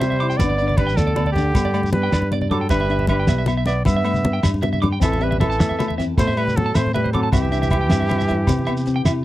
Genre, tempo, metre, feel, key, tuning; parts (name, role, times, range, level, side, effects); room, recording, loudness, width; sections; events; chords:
highlife guitar band; 104 BPM (dotted quarters); 12/8; straight; G major; A4 = 440 Hz
warm trumpet; melody; 0.0-9.2 s; G4 to E5; -24 LUFS; equal
bright trombone; second line; 0.0-9.2 s; D3 to B3; -28 LUFS; right 5 dB
clean electric guitar; accompaniment; 0.0-9.2 s; G3 to E4; -27 LUFS; left 6 dB; spring reverb
electric guitar at the edge of break-up; arpeggios; 0.0-9.1 s; C5 to D6; -28 LUFS; right 5 dB
fingered electric bass; bass; 0.0-9.2 s; G1 to C3; -22 LUFS; equal
cloth-damped thuddy drum kit; drums; 0.0-9.1 s; hi-hat, kick drum, snare drum; -20 LUFS; equal
congas; percussion; 0.0-9.2 s; -26 LUFS; left 1 dB
shekere; percussion; 0.0-9.1 s; -24 LUFS; right 1 dB
agogo bells; percussion; 0.2-9.2 s; -34 LUFS; left 3 dB
little or no reverb; dry, close 1970s-style studio recording; -17 LUFS; side -15 dB against mid
0.0-9.2 A section
drum fill 8.7-9.2
0.4 G; 2.7 Em/G; 5.0 Am; 7.3 C